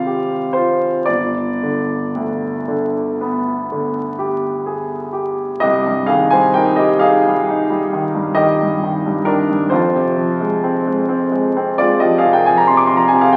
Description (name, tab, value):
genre	classical, romantic nocturne for solo piano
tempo	37-47 BPM (dotted quarters)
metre	9/8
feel	rubato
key	C minor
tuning	A4 = 439 Hz
part	clear concert grand piano	solo	0.0-13.4 s	G1 to D6	-17 LUFS	equal	none
room	wet recital hall reverb, RT60 1.4 s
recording	very old 78 rpm record, vinyl crackle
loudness	-17 LUFS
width	mono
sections	0.0-5.6 A section; 5.6-13.4 B section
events	none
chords	0.0 Fm/Ab; 1.1 G; 5.6 Cm; 9.7 Fm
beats	| 1.11 2.71 4.20 | 5.63 7.03 8.38 | 9.73 11.10 12.48